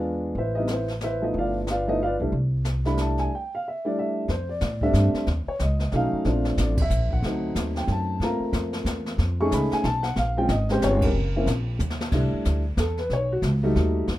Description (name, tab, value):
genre	jazz piano trio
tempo	184 BPM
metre	3/4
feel	swing 62% on 8ths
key	C major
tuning	A4 = 440 Hz
part	warm upright piano	melody	0.0-14.1 s	F3 to C#6	-25 LUFS	equal	none
part	upright bass	bass	0.0-14.2 s	Gb1 to A2	-25 LUFS	equal	none
part	jazz brush drum kit	drums	0.4-14.2 s	brushed snare drum, crash cymbal, hi-hat, kick drum, ride cymbal, snare drum, toms	-31 LUFS	equal	none
room	moderate studio ambience, RT60 0.5 s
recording	rough home demo mix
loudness	-22 LUFS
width	side -15 dB against mid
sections	0.0-4.3 A section; 4.3-12.1 B section; 12.1-14.2 C section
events	break 3.3-4.3; band accent 6.7, 11.0; drum fill 11.8-12.1; upright piano solo 12.1-14.2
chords	0.4 Amadd9; 1.3 G13; 2.3 C69; 4.3 F69; 5.3 B9; 6.3 Bbmaj7; 7.2 D7b9; 8.2 Gm11; 9.2 F7alt; 10.2 Bbm7; 11.1 Gb; 11.8 N.C.; 12.1 C69; 13.1 B7b13